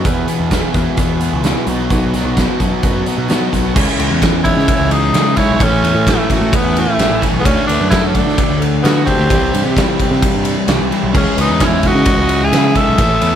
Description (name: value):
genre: classic rock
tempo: 130 BPM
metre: 4/4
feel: straight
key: unclear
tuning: A4 = 441 Hz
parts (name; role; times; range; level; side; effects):
- picked steel-string acoustic guitar; accompaniment; 0.0-13.4 s; A2 to B4; -25 LUFS; right 4 dB; none
- cranked stack guitar; riff; 0.0-13.4 s; E2 to G#4; -22 LUFS; right 11 dB; overdrive
- overdriven semi-hollow guitar; riff; 0.0-13.4 s; E2 to D4; -20 LUFS; left 10 dB; none
- growling picked electric bass; bass; 0.0-13.3 s; A1 to D3; -18 LUFS; equal; overdrive
- big rock drum kit; drums; 0.1-13.3 s; crash cymbal, hi-hat, kick drum, ride cymbal, snare drum; -17 LUFS; equal; none
- growling tenor saxophone; melody; 4.4-13.4 s; A3 to A4; -18 LUFS; equal; tape echo
- dark smooth lead guitar; second line; 4.5-13.4 s; E4 to E5; -24 LUFS; right 4 dB; overdrive
room: light reverb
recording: none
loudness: -12 LUFS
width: side -9 dB against mid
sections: 0.0-3.8 A section; 3.8-13.4 B section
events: none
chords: 0.1 E; 1.7 B; 3.8 C#madd9; 5.6 A; 7.5 D; 9.3 C; 11.1 C#madd9